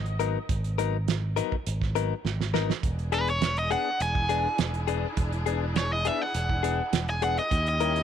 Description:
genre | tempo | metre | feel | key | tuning
straight-eighth soul blues | 102 BPM | 4/4 | straight | unclear | A4 = 444 Hz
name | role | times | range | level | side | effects
fingered electric bass | bass | 0.0-8.0 s | E1 to D#2 | -29 LUFS | right 1 dB | none
cloth-damped thuddy drum kit | drums | 0.1-8.0 s | hi-hat, kick drum, snare drum | -30 LUFS | right 5 dB | none
direct-recorded clean electric guitar | stabs | 0.2-8.0 s | F#3 to A#4 | -31 LUFS | left 14 dB | none
warm studio string section | sustained chords | 2.8-8.0 s | C#4 to G#4 | -38 LUFS | equal | none
cranked stack guitar | melody | 3.1-8.0 s | B4 to G#5 | -28 LUFS | right 1 dB | overdrive, tape echo
room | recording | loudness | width
little or no reverb | 1960s-style stereo | -25 LUFS | side -9 dB against mid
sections
0.0-8.0 A section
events
drum fill 2.2-2.8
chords
0.0 G#m9; 2.8 E7; 7.5 D#7b9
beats
| 0.49 1.07 1.66 2.24 | 2.83 3.41 4.00 4.58 | 5.17 5.75 6.34 6.92 | 7.51

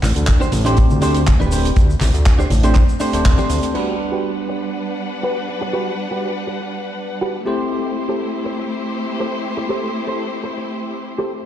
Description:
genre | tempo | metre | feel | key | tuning
nu-disco, nu disco | 121 BPM | 4/4 | swing 53% on 16ths | G major | A4 = 441 Hz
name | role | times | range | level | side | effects
fat analog bass | bass | 0.0-3.6 s | D1 to D2 | -17 LUFS | equal | none
damped 70s drum kit | drums | 0.0-3.9 s | crash cymbal, handclaps, hi-hat, shaker | -26 LUFS | right 1 dB | studio reverb
congas | percussion | 0.0-3.5 s | none | -26 LUFS | left 2 dB | none
kick drum | drums | 0.3-3.4 s | none | -14 LUFS | equal | studio reverb
direct-recorded clean electric guitar | riff | 0.4-11.5 s | D4 to C5 | -25 LUFS | right 2 dB | analog chorus, low-pass filter, tape echo
bell-like tine electric piano | accompaniment | 0.7-11.4 s | G3 to F#5 | -24 LUFS | equal | lush chorus, tape echo
warm studio string section | sustained chords | 3.7-11.5 s | G3 to F#5 | -25 LUFS | left 2 dB | sidechain pumping
room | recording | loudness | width
light reverb, small room ambience | played on a big sound system in a bare room, large studio reverb | -16 LUFS | side -11 dB against mid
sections
0.0-3.7 A section; 3.7-11.5 B section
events
none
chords
0.0 D7sus4; 3.7 Gmaj7; 7.5 Am7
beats
0.28 0.77 1.27 | 1.76 2.26 2.76 3.25 | 3.75 4.24 4.74 5.24 | 5.73 6.23 6.72 7.22 | 7.72 8.21 8.71 9.20 | 9.70 10.20 10.69 11.19

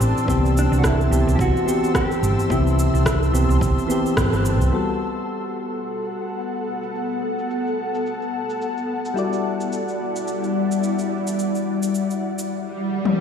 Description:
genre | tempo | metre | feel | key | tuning
sunset chillout | 108 BPM | 4/4 | swing 57% on 16ths | G major | A4 = 439 Hz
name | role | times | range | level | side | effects
soft electric-piano-like synth keys | accompaniment | 0.0-13.2 s | E3 to D5 | -25 LUFS | moving between left 5 dB and right 3 dB | chorus, auto-pan, ping-pong delay
ethereal airy pad | sustained chords | 0.0-12.5 s | G3 to E6 | -25 LUFS | left 2 dB | ensemble chorus, built-in reverb
hollow-body short-scale fingered electric bass | bass | 0.0-4.7 s | G1 to C2 | -19 LUFS | right 1 dB | none
deep house drum kit | drums | 0.0-13.2 s | cabasa, rim click, toms | -28 LUFS | equal | overdrive, low-pass filter on perc, low-pass filter on snare, low-pass filter on toms, low-pass filter on room
electronic kick drum | drums | 0.3-4.3 s | none | -25 LUFS | right 1 dB | overdrive
mellow electric guitar | melody | 0.6-3.3 s | D4 to G4 | -26 LUFS | equal | ping-pong delay
swell | sound effects | 12.7-13.2 s | none | -24 LUFS | left 1 dB | none
room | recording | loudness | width
moderate lush hall reverb, RT60 2.2 s | played on a big sound system in a bare room, stone room reverb | -19 LUFS | side -7 dB against mid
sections
0.0-4.7 A section; 4.7-13.2 B section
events
band accent 4.2; filter sweep on ambient pad 4.7-13.2; swell 12.7-13.2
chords
0.3 Cmaj7; 4.7 Gmaj9; 9.2 Em9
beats
| 0.28 0.83 1.39 1.95 | 2.50 3.06 3.61 4.17 | 4.72 5.28 5.83 6.39 | 6.95 7.50 8.06 8.61 | 9.17 9.72 10.28 10.83 | 11.39 11.95 12.50 13.06

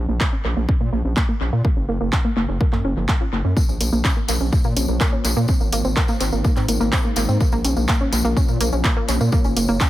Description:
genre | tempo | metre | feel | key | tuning
melodic techno | 125 BPM | 4/4 | straight | Bb minor | A4 = 440 Hz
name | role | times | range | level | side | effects
wide unison pluck | arpeggios | 0.0-9.9 s | F3 to F4 | -24 LUFS | right 1 dB | sidechain pumping, dub echo
gritty driven synth bass | bass | 0.0-9.8 s | Gb1 to Bb2 | -22 LUFS | equal | sidechain pumping
electronic kick drum | drums | 0.2-9.9 s | none | -19 LUFS | equal | none
techno drum kit | drums | 0.2-9.9 s | handclaps, hi-hat | -26 LUFS | right 1 dB | overdrive, analog delay
deep dark ambient pad | sustained chords | 4.5-9.9 s | Ab3 to Db5 | -29 LUFS | equal | chorus, built-in reverb, sidechain pumping
tambourine | percussion | 3.6-9.9 s | none | -30 LUFS | left 3 dB | analog delay
room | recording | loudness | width
little or no reverb | echo-heavy mix | -17 LUFS | side -15 dB against mid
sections
0.0-9.9 A section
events
filter sweep on synth pluck 0.0-9.9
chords
0.0 Bbm; 1.6 Gb; 3.6 Bbm; 5.5 Ab; 7.4 Bbm; 9.3 Gb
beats
0.21 0.69 1.17 | 1.65 2.13 2.61 3.09 | 3.57 4.05 4.53 5.01 | 5.49 5.97 6.45 6.93 | 7.41 7.89 8.37 8.85 | 9.33 9.81

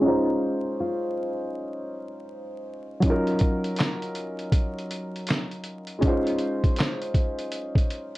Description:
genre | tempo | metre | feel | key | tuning
lo-fi hip hop | 80 BPM | 4/4 | swing 64% on 16ths | unclear | A4 = 440 Hz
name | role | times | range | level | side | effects
nylon-string guitar | melody | 0.0-2.6 s | Eb4 to F4 | -33 LUFS | left 1 dB | low-pass filter
warm upright piano | accompaniment | 0.0-8.2 s | Gb3 to C5 | -26 LUFS | equal | cassette tape, low-pass filter
lo-fi sampler-style drum kit | drums | 3.0-8.2 s | handclaps, hi-hat, kick drum, snare drum | -24 LUFS | equal | none
room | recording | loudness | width
little or no reverb | dry, gritty hardware recording, vinyl crackle, nothing above 11.0 kHz | -24 LUFS | side -18 dB against mid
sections
0.0-8.2 A section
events
filter sweep 0.0-8.2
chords
0.0 Dbmaj9/Ab; 3.0 Ebm9; 6.0 Dbmaj9/Ab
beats
| 0.03 0.78 1.53 2.28 | 3.03 3.78 4.53 5.28 | 6.03 6.78 7.53

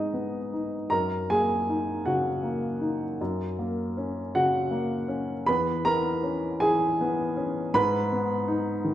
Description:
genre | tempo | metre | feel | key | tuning
neoclassical minimalist piano | 53 BPM (dotted quarters) | 6/8 | rubato | G# minor | A4 = 440 Hz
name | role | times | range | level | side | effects
warm upright piano | solo | 0.0-8.9 s | E2 to B5 | -24 LUFS | equal | none
room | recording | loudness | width
wet recital hall reverb, RT60 1.4 s | recorded in a church or concert hall | -24 LUFS | side -12 dB against mid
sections
0.0-8.9 A section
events
none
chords
0.0 G#m; 0.9 D#m7/F#; 3.2 F#; 5.5 C#m7/E; 7.7 G#m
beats
| 0.90 2.04 | 3.19 4.34 | 5.47 6.61 | 7.73 8.85

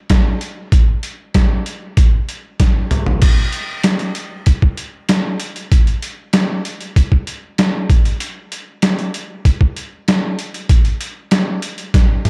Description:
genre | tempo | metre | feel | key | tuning
rock | 96 BPM | 4/4 | straight | none | none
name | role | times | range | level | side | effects
trip hop sampler-style drum kit | drums | 0.1-12.3 s | crash cymbal, hi-hat, kick drum, snare drum, toms | -16 LUFS | equal | none
room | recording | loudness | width
little or no reverb | dark, warm production | -17 LUFS | mono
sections
0.0-3.2 A section; 3.2-12.3 B section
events
drum fill 2.6-3.2, 11.9-12.3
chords
none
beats
0.10 | 0.73 1.35 1.97 2.59 | 3.22 3.84 4.46 5.08 | 5.71 6.33 6.95 7.57 | 8.20 8.82 9.44 10.06 | 10.69 11.31 11.94

